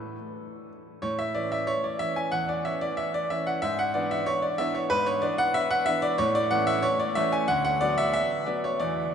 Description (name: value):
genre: classical-period piano sonatina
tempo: 92 BPM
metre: 4/4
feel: straight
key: A major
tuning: A4 = 440 Hz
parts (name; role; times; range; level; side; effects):
- clear grand piano; solo; 0.0-9.1 s; D2 to G#5; -24 LUFS; equal; none
room: wet cathedral reverb, RT60 6.5 s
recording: in a vast, echoing space, nothing above 10.6 kHz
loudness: -24 LUFS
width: side -7 dB against mid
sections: 0.0-1.0 A section; 1.0-9.1 A section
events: none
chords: 0.0 N.C.; 1.0 A; 3.6 E7/G#; 6.2 A; 7.5 Bm/D